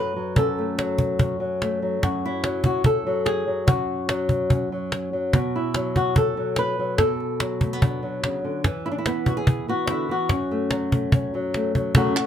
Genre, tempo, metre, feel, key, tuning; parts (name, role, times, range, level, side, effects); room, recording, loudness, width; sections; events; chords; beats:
flamenco; 145 BPM; 4/4; straight; F# minor; A4 = 440 Hz
flamenco guitar; melody; 0.0-12.3 s; F#2 to B4; -23 LUFS; left 1 dB
cajon; percussion; 0.4-12.2 s; -21 LUFS; equal
palmas hand claps; percussion; 12.2-12.3 s; -25 LUFS; right 5 dB
light reverb; -21 LUFS; side -9 dB against mid
0.0-12.0 A section
drum fill 11.5-12.0
0.0 F#m; 5.3 Bm; 8.6 E5; 10.3 F#m
| 0.37 0.79 1.20 1.61 | 2.03 2.44 2.85 3.27 | 3.68 4.09 4.51 4.92 | 5.33 5.75 6.16 6.58 | 6.99 7.40 7.82 8.23 | 8.64 9.05 9.47 9.88 | 10.30 10.71 11.12 11.54 | 11.95